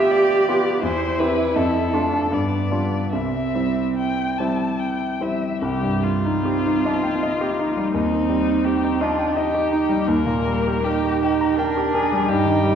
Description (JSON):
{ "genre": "classical, slow romantic movement for piano trio", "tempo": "70-86 BPM", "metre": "3/4", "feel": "rubato", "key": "C major, C minor from 5.6 s", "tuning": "A4 = 439 Hz", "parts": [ { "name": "muted violin", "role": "melody", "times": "0.0-12.8 s", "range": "Eb4 to A5", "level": "-26 LUFS", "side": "left 5 dB", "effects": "none" }, { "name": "muted cello", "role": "second line", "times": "0.0-12.8 s", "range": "G3 to G4", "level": "-22 LUFS", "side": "right 5 dB", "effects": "none" }, { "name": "clear concert grand piano", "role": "accompaniment", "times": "0.0-12.8 s", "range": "C2 to Bb5", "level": "-22 LUFS", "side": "left 1 dB", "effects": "none" } ], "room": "wet concert hall reverb, RT60 2.2 s", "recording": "recorded in a church or concert hall", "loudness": "-18 LUFS", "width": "side -8 dB against mid", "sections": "0.0-5.6 A section; 5.6-12.8 B section", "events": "none", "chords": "0.0 G7/D; 0.8 C/E; 1.6 Dm/F; 2.3 G7; 3.1 C; 5.6 Cm; 7.9 Cm/Eb; 10.1 Eb", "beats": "0.11 | 0.83 1.56 2.32 | 3.12 3.97 4.80 | 5.62 6.45 7.22 | 7.94 8.66 9.37 | 10.08 10.86 11.58 | 12.29" }